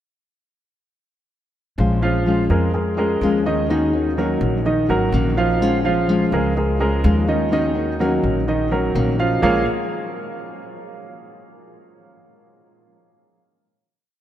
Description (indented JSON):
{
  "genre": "latin",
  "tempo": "126 BPM",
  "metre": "4/4",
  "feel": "straight",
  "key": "Bb minor",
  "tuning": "A4 = 440 Hz",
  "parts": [
    { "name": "nylon-string guitar", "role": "accompaniment", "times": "1.8-9.6 s", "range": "Bb2 to Gb4", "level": "-22 LUFS", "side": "left 3 dB", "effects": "none" },
    { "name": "upright bass", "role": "bass", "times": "1.8-9.7 s", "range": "Ab1 to F2", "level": "-22 LUFS", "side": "equal", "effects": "none" },
    { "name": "warm grand piano", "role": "arpeggios", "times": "2.0-9.7 s", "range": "Eb3 to F5", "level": "-20 LUFS", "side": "right 2 dB", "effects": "none" }
  ],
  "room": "wet cathedral reverb, RT60 5.2 s",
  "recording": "in a vast, echoing space",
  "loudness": "-17 LUFS",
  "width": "side -11 dB against mid",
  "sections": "1.8-9.4 montuno (vamp); 9.4-11.3 final chord",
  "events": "none",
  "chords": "1.8 Bbm7; 3.7 Ebm7; 5.6 Bbm7; 7.5 Ebm7; 9.4 Bbm7",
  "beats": "| 1.78 2.26 2.74 3.22 | 3.70 4.17 4.65 5.13 | 5.61 6.09 6.57 7.04 | 7.52 8.00 8.48 8.95 | 9.43"
}